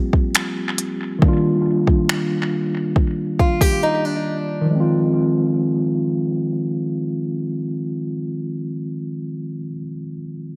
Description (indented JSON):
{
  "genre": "contemporary R&B",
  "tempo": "69 BPM",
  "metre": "4/4",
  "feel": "straight",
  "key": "F dorian",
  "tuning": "A4 = 440 Hz",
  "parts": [
    { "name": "mellow tine electric piano", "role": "accompaniment", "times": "0.0-10.6 s", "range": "Eb3 to G4", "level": "-23 LUFS", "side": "equal", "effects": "analog delay" },
    { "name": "smooth R&B drum kit", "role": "drums", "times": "0.1-3.8 s", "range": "finger snaps, hi-hat, kick drum", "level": "-21 LUFS", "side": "equal", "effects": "overdrive, analog delay" },
    { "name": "fingerpicked acoustic archtop guitar", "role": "arpeggios", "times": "3.4-4.7 s", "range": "D4 to G4", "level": "-24 LUFS", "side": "equal", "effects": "analog delay" }
  ],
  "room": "light reverb",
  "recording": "echo-heavy mix",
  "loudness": "-21 LUFS",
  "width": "mono",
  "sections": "0.0-4.7 A section; 4.7-8.2 B section",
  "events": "break 3.8-4.7",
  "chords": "0.0 C7sus4; 1.2 Ebmaj9; 4.7 Fm7"
}